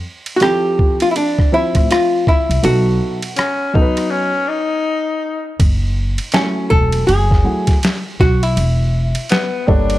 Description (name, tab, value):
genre	hip hop, jazz-hop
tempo	81 BPM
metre	4/4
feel	swing 61% on 16ths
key	unclear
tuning	A4 = 441 Hz
part	boom bap sampler-style drum kit	drums	0.3-10.0 s	hi-hat, kick drum, ride cymbal, rim click, snare drum	-18 LUFS	equal	none
part	archtop guitar, miked and amplified	melody	0.4-10.0 s	C#4 to A4	-17 LUFS	equal	none
part	dark baby grand piano	accompaniment	0.4-10.0 s	F3 to G#5	-21 LUFS	right 1 dB	none
part	upright bass	bass	1.8-10.0 s	E1 to A2	-17 LUFS	equal	none
part	breathy tenor saxophone	second line	3.4-10.0 s	B3 to D#4	-19 LUFS	left 3 dB	slapback echo
room	light reverb, studio ambience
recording	dark, warm production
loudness	-13 LUFS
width	side -15 dB against mid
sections	0.0-5.6 A section; 5.6-10.0 B section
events	break 4.1-5.6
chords	0.0 Fmaj7; 2.6 B7; 5.6 F#m9; 8.6 Em